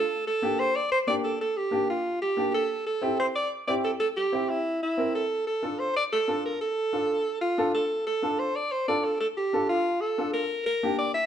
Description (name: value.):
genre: latin.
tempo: 184 BPM.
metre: 4/4.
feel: straight.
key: D minor.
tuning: A4 = 440 Hz.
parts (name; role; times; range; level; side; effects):
clear alto saxophone; melody; 0.0-11.3 s; E4 to E5; -26 LUFS; right 1 dB; none.
warm upright piano; accompaniment; 0.4-11.1 s; Bb3 to Bb4; -29 LUFS; left 1 dB; none.
room: wet stone room reverb, RT60 1.0 s.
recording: band playing live in one room, nothing above 10.6 kHz.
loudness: -24 LUFS.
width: side -9 dB against mid.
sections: 0.0-7.9 A section; 7.9-11.3 B section.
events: none.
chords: 0.1 Gm; 2.7 C; 5.3 Dm; 10.5 Gm.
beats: | 0.10 0.42 0.75 1.07 | 1.40 1.72 2.05 2.38 | 2.70 3.02 3.35 3.68 | 4.00 4.33 4.65 4.98 | 5.30 5.63 5.95 6.28 | 6.61 6.93 7.26 7.58 | 7.91 8.23 8.56 8.88 | 9.21 9.53 9.86 10.19 | 10.51 10.84 11.16.